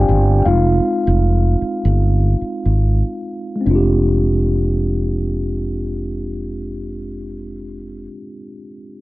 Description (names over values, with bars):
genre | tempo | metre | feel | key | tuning
R&B, neo-soul | 70-80 BPM | 4/4 | swing 60% on 16ths | F dorian | A4 = 440 Hz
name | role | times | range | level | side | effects
mellow tine electric piano | accompaniment | 0.0-9.0 s | Ab3 to Ab5 | -20 LUFS | equal | slow stereo tremolo
fretless electric bass | bass | 0.0-8.1 s | F1 to Ab1 | -17 LUFS | equal | lush chorus
room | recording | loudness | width
little or no reverb | dry, close 1970s-style studio recording | -15 LUFS | side -19 dB against mid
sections
0.0-3.7 A section; 3.7-7.1 B section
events
slowing down 0.0-3.7; tine electric piano solo 0.0-3.7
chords
0.5 Fm9; 3.7 Fm69